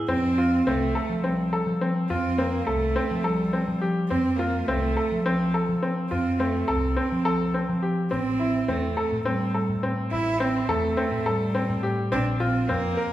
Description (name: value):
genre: contemporary instrumental, chamber music in an uneven meter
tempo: 209 BPM (eighths)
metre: 7/8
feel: straight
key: unclear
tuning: A4 = 441 Hz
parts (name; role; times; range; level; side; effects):
- clear grand piano; arpeggios; 0.0-13.1 s; C4 to Bb4; -27 LUFS; left 2 dB; none
- warm cello; melody; 0.1-13.1 s; F3 to E4; -26 LUFS; right 2 dB; none
- picked electric bass; bass; 0.1-13.0 s; A1 to F3; -28 LUFS; left 1 dB; none
room: wet recital hall reverb, RT60 1.9 s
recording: recorded in a church or concert hall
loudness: -22 LUFS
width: side -13 dB against mid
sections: 0.1-13.1 A section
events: none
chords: 0.1 F; 8.1 Am; 12.1 Bbsus2